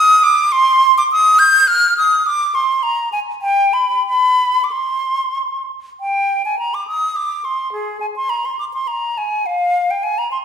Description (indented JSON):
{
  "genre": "classical, baroque-style fantasia for unaccompanied flute",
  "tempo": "90-108 BPM",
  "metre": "3/4",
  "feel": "rubato",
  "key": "C minor",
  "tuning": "A4 = 445 Hz",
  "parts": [
    { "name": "bright silver concert flute", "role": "solo", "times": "0.0-10.4 s", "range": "Ab4 to G6", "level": "-13 LUFS", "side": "equal", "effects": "none" }
  ],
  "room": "wet recital hall reverb, RT60 1.4 s",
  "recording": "recorded in a church or concert hall",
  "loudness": "-14 LUFS",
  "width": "side -8 dB against mid",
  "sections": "0.0-6.0 A section; 6.0-10.4 A section",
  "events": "none",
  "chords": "none",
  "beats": "| 0.53 1.11 1.69 | 2.26 2.84 3.44 | 4.08 4.72 5.37 | 6.01 6.60 7.18 | 7.76 8.32 8.89 | 9.47 10.04"
}